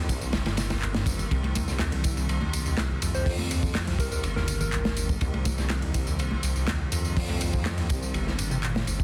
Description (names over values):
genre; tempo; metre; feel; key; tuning
breakbeat, breaks; 123 BPM; 4/4; straight; C minor; A4 = 440 Hz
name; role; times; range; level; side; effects
warbly tape-like pad; sustained chords; 0.0-9.0 s; Eb3 to C5; -40 LUFS; equal; none
deep acid bass; riff; 0.0-9.0 s; Bb1 to Eb3; -33 LUFS; equal; analog chorus
dark detuned saw bass; bass; 0.0-9.0 s; G1 to F2; -32 LUFS; equal; tube saturation
crunchy breakbeat drum kit; drums; 0.1-9.0 s; hi-hat, kick drum, ride cymbal, snare drum; -32 LUFS; equal; none
house drum kit; drums; 0.1-9.0 s; handclaps, ride cymbal, tambourine; -37 LUFS; equal; none
congas; percussion; 1.4-8.9 s; none; -39 LUFS; equal; none
soft struck synth lead; melody; 3.1-5.1 s; Bb4 to C5; -38 LUFS; equal; chorus, small speaker sound, tape echo
room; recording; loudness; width
small room ambience; dense, heavily limited modern master; -27 LUFS; mono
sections
0.0-9.0 A section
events
none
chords
0.0 Cm7